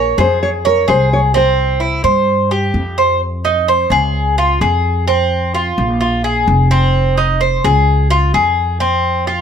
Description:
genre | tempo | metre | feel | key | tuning
latin, Cuban son and guajira | 129 BPM | 4/4 | straight | F minor | A4 = 443 Hz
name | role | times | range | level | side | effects
nylon-string guitar | melody | 0.0-2.7 s | Bb4 to Db5 | -17 LUFS | left 3 dB | none
Cuban tres | arpeggios | 0.0-9.4 s | C4 to Db5 | -14 LUFS | right 1 dB | none
upright bass | bass | 0.0-9.4 s | F1 to G2 | -16 LUFS | equal | none
room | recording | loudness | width
moderate studio reverb, RT60 0.8 s | none | -12 LUFS | side -7 dB against mid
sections
0.0-3.2 A section; 3.2-9.4 B section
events
none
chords
0.0 Bbm7; 1.3 C; 3.2 Fm7; 4.1 Db; 5.1 F5; 6.0 Bb5; 6.9 Fm7; 7.9 Db; 8.8 F5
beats
0.42 0.88 | 1.35 1.81 2.28 2.75 | 3.21 3.68 4.14 4.61 | 5.08 5.54 6.01 6.47 | 6.94 7.41 7.87 8.34 | 8.81 9.27

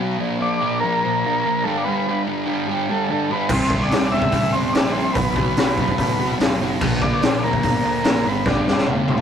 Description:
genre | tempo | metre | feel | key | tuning
garage rock duo or trio | 145 BPM | 4/4 | straight | unclear | A4 = 443 Hz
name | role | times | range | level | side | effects
fuzz guitar | riff | 0.0-9.2 s | G2 to C4 | -22 LUFS | equal | distortion
overdriven combo organ | melody | 0.4-8.9 s | A4 to E5 | -24 LUFS | equal | tape echo
fuzz picked electric bass | bass | 3.5-9.2 s | D1 to D2 | -27 LUFS | equal | overdrive
raw garage drum kit | drums | 3.5-9.2 s | crash cymbal, hi-hat, kick drum, snare drum, toms | -20 LUFS | left 1 dB | none
room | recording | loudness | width
light reverb | rough rehearsal-room recording, tube saturation | -17 LUFS | side -8 dB against mid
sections
0.0-9.2 A section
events
drum fill 8.5-9.2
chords
0.2 Bb; 1.6 G; 3.5 C; 5.2 Bm; 6.8 Bb; 8.3 G5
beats
| 0.19 0.60 1.01 1.43 | 1.84 2.25 2.67 3.08 | 3.50 3.91 4.32 4.74 | 5.15 5.57 5.98 6.40 | 6.81 7.22 7.64 8.05 | 8.47 8.88

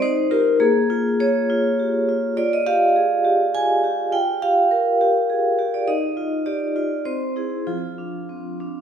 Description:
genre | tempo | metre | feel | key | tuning
classical, contemporary piece for solo vibraphone | 102 BPM | 3/4 | straight | unclear | A4 = 439 Hz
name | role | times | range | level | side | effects
vibraphone with medium hard mallets | solo | 0.0-8.8 s | F3 to Ab5 | -18 LUFS | equal | none
room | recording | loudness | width
wet recital hall reverb, RT60 1.7 s | heard from further back in the room | -18 LUFS | side -8 dB against mid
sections
0.0-8.8 A section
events
none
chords
0.0 Ebadd9; 0.6 Bbm7; 2.4 Fmadd9; 4.1 Bb5/F; 5.9 Ebadd9; 7.1 Caug; 7.7 F5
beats
0.01 | 0.60 1.20 1.79 | 2.37 2.96 3.54 | 4.13 4.71 5.29 | 5.88 6.46 7.06 | 7.68 8.30

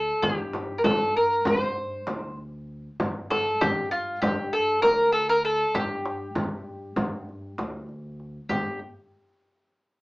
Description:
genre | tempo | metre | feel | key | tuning
Turkish makam ensemble | 196 BPM (eighths) | 9/8 | straight | G makam ussak | A4 = 442 Hz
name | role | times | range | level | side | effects
mandolin | melody | 0.0-8.8 s | F4 to C5 | -24 LUFS | equal | none
upright bass | bass | 0.0-8.8 s | G1 to G2 | -39 LUFS | equal | none
darbuka | percussion | 0.2-8.8 s | none | -35 LUFS | equal | none
frame drum | percussion | 0.2-8.8 s | none | -29 LUFS | equal | none
room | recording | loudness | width
wet small room reverb, RT60 0.5 s | heard from further back in the room, small speaker sound | -23 LUFS | side -24 dB against mid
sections
0.0-8.5 A section; 8.5-10.0 B section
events
none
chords
none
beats
| 0.23 0.54 0.85 1.16 1.46 1.77 2.08 2.38 2.69 | 3.00 3.30 3.61 3.92 4.22 4.53 4.83 5.14 5.45 | 5.75 6.06 6.37 6.67 6.98 7.28 7.59 7.90 8.20 | 8.51

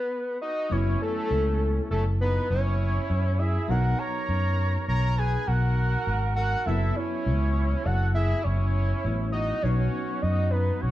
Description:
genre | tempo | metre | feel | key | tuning
progressive instrumental, progressive | 101 BPM | 5/4 | straight | unclear | A4 = 440 Hz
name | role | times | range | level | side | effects
fat analog lead | melody | 0.0-10.9 s | A4 to A#5 | -30 LUFS | equal | none
clear flugelhorn | second line | 0.4-10.9 s | C#4 to C#5 | -35 LUFS | right 3 dB | none
bell-like tine electric piano | accompaniment | 0.7-10.9 s | F#3 to E4 | -35 LUFS | left 1 dB | medium stereo tremolo
fingered electric bass | bass | 0.7-10.9 s | F#1 to F#2 | -24 LUFS | equal | none
room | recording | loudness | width
wet stone room reverb, RT60 1.0 s | band playing live in one room | -23 LUFS | side -14 dB against mid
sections
0.7-10.9 A section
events
stop 0.0-0.7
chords
0.0 N.C.; 0.7 F#m7; 3.7 Bmaj9; 6.7 F#m7; 9.6 Badd9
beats
0.12 | 0.71 1.31 1.91 2.50 3.10 | 3.70 4.29 4.89 5.48 6.08 | 6.67 7.26 7.86 8.45 9.05 | 9.64 10.23 10.83

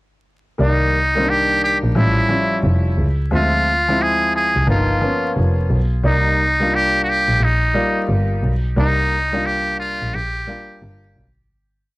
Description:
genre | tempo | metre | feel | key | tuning
hip hop, jazz-hop | 88 BPM | 4/4 | swing 65% on 16ths | C minor | A4 = 440 Hz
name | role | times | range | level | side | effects
trumpet with metal mute | melody | 0.6-10.8 s | Eb4 to Ab4 | -19 LUFS | equal | tape echo
clear upright piano | accompaniment | 0.6-11.2 s | Eb3 to E5 | -22 LUFS | left 1 dB | none
rich double bass | bass | 0.6-11.4 s | F1 to D2 | -19 LUFS | equal | tube saturation
room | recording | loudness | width
little or no reverb | dry, gritty hardware recording, transformer saturation, vinyl crackle, faint mains hum | -15 LUFS | side -20 dB against mid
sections
0.6-11.5 A section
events
fade-out 8.8-11.5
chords
0.6 Cm9; 2.0 A7b13; 3.3 Dm7b5; 4.7 G7alt; 6.0 Cm9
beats
| 0.59 1.27 1.95 2.63 | 3.31 4.00 4.68 5.36 | 6.04 6.72 7.41 8.09 | 8.77 9.45 10.13 10.81

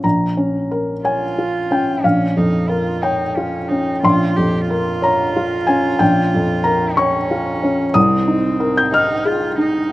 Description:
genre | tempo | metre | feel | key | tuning
neoclassical piano and strings | 61 BPM (dotted quarters) | 6/8 | rubato | Bb dorian | A4 = 439 Hz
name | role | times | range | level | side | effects
felt-muted upright piano | accompaniment | 0.0-9.9 s | Bb1 to G6 | -15 LUFS | left 1 dB | none
warm cello | second line | 1.0-9.9 s | C4 to G4 | -24 LUFS | right 4 dB | none
room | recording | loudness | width
little or no reverb | recorded outdoors, with no room sound | -15 LUFS | side -16 dB against mid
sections
0.0-9.9 A section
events
none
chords
0.0 Bbmadd9; 8.0 Abadd9/C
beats
| 0.04 1.04 | 2.03 3.02 | 4.04 5.03 | 6.01 6.98 | 7.96 8.94

